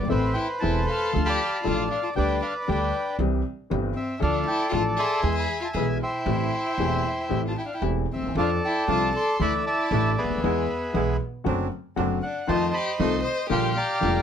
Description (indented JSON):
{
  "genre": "tango",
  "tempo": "117 BPM",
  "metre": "4/4",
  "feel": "rubato",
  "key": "A minor",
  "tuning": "A4 = 438 Hz",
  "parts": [
    { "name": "bandoneon", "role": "melody", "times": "0.0-14.2 s", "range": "G#4 to Eb6", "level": "-26 LUFS", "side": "equal", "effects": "none" },
    { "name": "warm violin", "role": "second line", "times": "0.0-14.2 s", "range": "B3 to C5", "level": "-31 LUFS", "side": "left 3 dB", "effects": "none" },
    { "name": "warm grand piano", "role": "accompaniment", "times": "0.0-14.2 s", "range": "E1 to A4", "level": "-27 LUFS", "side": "left 5 dB", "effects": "none" },
    { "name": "upright bass", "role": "bass", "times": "0.0-14.2 s", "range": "E1 to F2", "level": "-28 LUFS", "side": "right 4 dB", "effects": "none" },
    { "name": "bandoneon", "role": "stabs", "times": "8.4-14.2 s", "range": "F3 to F4", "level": "-32 LUFS", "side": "right 6 dB", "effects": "none" }
  ],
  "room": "light reverb",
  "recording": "none",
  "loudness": "-22 LUFS",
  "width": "side -8 dB against mid",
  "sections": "0.0-14.2 A section",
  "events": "none",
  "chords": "0.1 Amadd9; 1.1 Dm; 2.2 G/D; 3.2 C; 4.2 Dm; 5.2 E; 6.3 Am7; 8.4 F6; 9.4 Dsus2; 10.4 E; 11.5 D7/F#; 12.5 F7; 13.5 Bb6"
}